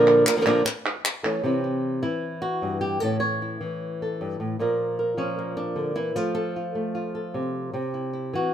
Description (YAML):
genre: flamenco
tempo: 152 BPM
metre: 4/4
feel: straight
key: unclear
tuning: A4 = 440 Hz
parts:
  - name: flamenco guitar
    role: melody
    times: 0.0-8.5 s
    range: G2 to C#5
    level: -23 LUFS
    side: equal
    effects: none
  - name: palmas hand claps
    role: percussion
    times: 0.1-1.4 s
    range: none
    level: -26 LUFS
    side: equal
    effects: none
room: wet stone room reverb, RT60 1.1 s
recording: minimal, uncompressed stereo recording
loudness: -24 LUFS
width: side -10 dB against mid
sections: 0.0-1.4 A section; 1.4-8.5 B section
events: none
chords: 0.0 Bb; 0.6 A; 1.4 C; 3.0 A; 4.6 Bb; 6.2 F; 7.7 C